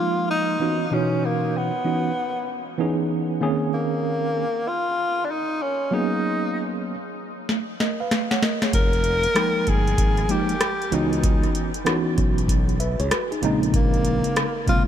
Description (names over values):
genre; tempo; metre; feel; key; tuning
hip hop, jazz-hop; 96 BPM; 4/4; swing 63% on 16ths; unclear; A4 = 440 Hz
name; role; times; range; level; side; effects
breathy tenor saxophone; melody; 0.0-14.8 s; Bb3 to Bb4; -26 LUFS; left 1 dB; none
tine electric piano; accompaniment; 0.0-14.9 s; Cb3 to G5; -24 LUFS; right 2 dB; overdrive, fast stereo tremolo
booming analog drum machine; drums; 7.5-14.9 s; hi-hat, kick drum, rim click, snare drum; -22 LUFS; equal; overdrive
sustaining fretless electric bass; bass; 8.7-14.9 s; F1 to Db2; -26 LUFS; equal; none
room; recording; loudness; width
light reverb, digital ambience; none; -20 LUFS; side -10 dB against mid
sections
0.0-14.9 A section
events
drum fill 7.5-8.7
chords
0.0 Fm11; 0.9 Dbm11; 3.4 Bbm11; 5.9 Abm11; 8.7 Fm11; 10.9 Dbm11; 13.4 Bbm11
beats
0.61 | 1.24 1.86 2.48 3.11 | 3.73 4.36 4.99 5.61 | 6.24 6.86 7.49 8.11 | 8.73 9.36 9.98 10.61 | 11.23 11.86 12.48 13.11 | 13.73 14.36